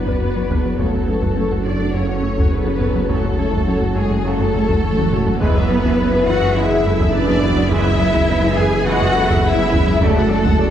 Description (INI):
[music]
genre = cinematic, hybrid orchestral and electronic film score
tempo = 104 BPM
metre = 4/4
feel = straight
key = F# minor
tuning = A4 = 440 Hz
[part]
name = dark symphonic violin section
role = melody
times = 0.0-10.7 s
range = G#4 to G#5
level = -26 LUFS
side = left 4 dB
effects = none
[part]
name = rich symphonic violin section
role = second line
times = 0.0-10.7 s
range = G#4 to G#5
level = -26 LUFS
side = left 1 dB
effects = none
[part]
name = warm symphonic viola section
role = accompaniment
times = 0.0-10.7 s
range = D4 to F#5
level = -26 LUFS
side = equal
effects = none
[part]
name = deep dark ambient pad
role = sustained chords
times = 0.0-10.7 s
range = D3 to C#5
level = -28 LUFS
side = equal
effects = chorus, built-in reverb
[part]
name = mellow French horn section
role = sustained chords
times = 0.0-10.7 s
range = E4 to B4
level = -26 LUFS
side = left 3 dB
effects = none
[part]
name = dark symphonic cello section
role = bass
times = 0.0-10.7 s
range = G#3 to G#4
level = -22 LUFS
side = right 2 dB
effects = none
[part]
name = dark symphonic double bass section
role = bass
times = 0.0-10.7 s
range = F#2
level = -26 LUFS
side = right 3 dB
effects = none
[part]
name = mellow tuba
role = bass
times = 0.0-10.7 s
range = F#1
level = -26 LUFS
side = right 2 dB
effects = none
[part]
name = pure sine sub bass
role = bass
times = 0.0-10.7 s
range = F#1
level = -27 LUFS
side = equal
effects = none
[part]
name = thumb-piano-like synth pluck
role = arpeggios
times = 0.1-10.7 s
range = D3 to F#4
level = -27 LUFS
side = right 1 dB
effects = none
[part]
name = rubbery square bass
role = riff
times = 0.1-10.7 s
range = F#2 to F#3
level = -24 LUFS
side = left 2 dB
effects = none
[part]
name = taiko ensemble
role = drums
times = 0.1-10.7 s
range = none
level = -22 LUFS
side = equal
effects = none
[part]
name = bright trombone section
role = sustained chords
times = 0.8-10.2 s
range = C#3 to A3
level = -30 LUFS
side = right 2 dB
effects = none
[sound]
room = wet scoring stage reverb, RT60 1.6 s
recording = heard from further back in the room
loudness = -14 LUFS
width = side -10 dB against mid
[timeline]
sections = 0.0-10.7 A section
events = drum fill 4.8-5.4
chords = 0.0 Bm/F#; 0.8 F#m; 5.4 E/F#; 10.0 D/F#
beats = 0.21 | 0.79 1.37 1.95 2.52 | 3.10 3.68 4.25 4.83 | 5.41 5.99 6.56 7.14 | 7.71 8.29 8.87 9.45 | 10.02 10.60